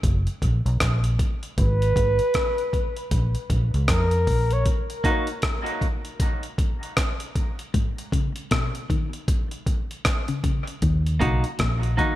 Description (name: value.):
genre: dub reggae.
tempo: 78 BPM.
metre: 4/4.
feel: swing 61% on 16ths.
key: Eb minor.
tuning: A4 = 439 Hz.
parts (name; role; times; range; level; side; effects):
vintage muted fingered electric bass; bass; 0.0-4.6, 10.8-12.0 s; Gb1 to F2; -22 LUFS; equal; none.
breakbeat sampler-style drum kit; drums; 0.0-12.2 s; hi-hat, kick drum, rim click; -24 LUFS; equal; none.
mellow flugelhorn; melody; 1.6-4.7 s; Bb4 to Db5; -26 LUFS; equal; dub echo.
clean electric guitar; accompaniment; 5.0-5.3, 11.2-12.2 s; Bb3 to Gb4; -27 LUFS; right 1 dB; tremolo, dub echo.
clean electric guitar; arpeggios; 7.7-12.2 s; Ab2 to Eb3; -30 LUFS; left 4 dB; none.
room: light reverb.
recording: echo-heavy mix.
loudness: -21 LUFS.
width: side -14 dB against mid.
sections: 0.0-12.2 A section.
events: break 0.0-12.2.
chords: 0.0 Gb; 1.6 Abm; 3.1 Bb5; 4.7 Ebm; 6.2 N.C.; 7.7 Abm; 9.3 N.C.; 10.8 Ebm.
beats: 0.04 0.81 | 1.58 2.35 3.12 3.89 | 4.66 5.43 6.20 6.97 | 7.74 8.51 9.28 10.05 | 10.82 11.59.